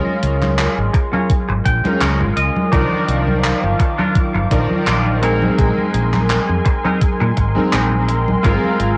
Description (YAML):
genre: vaporwave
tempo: 84 BPM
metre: 4/4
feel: swing 55% on 16ths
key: unclear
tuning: A4 = 435 Hz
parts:
  - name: bright electric grand piano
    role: accompaniment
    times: 0.0-9.0 s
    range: Eb3 to D5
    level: -23 LUFS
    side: equal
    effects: ensemble chorus, analog delay
  - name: semi-hollow electric guitar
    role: riff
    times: 0.0-9.0 s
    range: C4 to G5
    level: -25 LUFS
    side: equal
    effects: lush chorus, vintage 12-bit sampler grit, analog delay
  - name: gated 80s digital drum machine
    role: drums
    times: 0.1-9.0 s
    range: congas, handclaps, hi-hat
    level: -24 LUFS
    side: equal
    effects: gated reverb
  - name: mellow fretless electric bass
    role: bass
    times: 0.2-9.0 s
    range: G1 to Bb2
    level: -21 LUFS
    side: equal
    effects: none
  - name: electronic kick drum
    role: drums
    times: 0.9-8.6 s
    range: none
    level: -19 LUFS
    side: equal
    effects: overdrive
  - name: lush unison pad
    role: sustained chords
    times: 2.7-9.0 s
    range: Bb4 to D6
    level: -28 LUFS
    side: equal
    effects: chorus, phaser
room: light reverb, digital ambience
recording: home recording on cassette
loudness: -16 LUFS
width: mono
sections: 0.0-9.0 A section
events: clean electric guitar fill 1.3-2.7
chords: 0.0 Db6; 2.7 Cm11; 5.2 Bb9sus4; 8.4 Ab69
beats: 0.58 1.30 2.01 | 2.73 3.44 4.16 4.87 | 5.58 6.30 7.01 7.73 | 8.44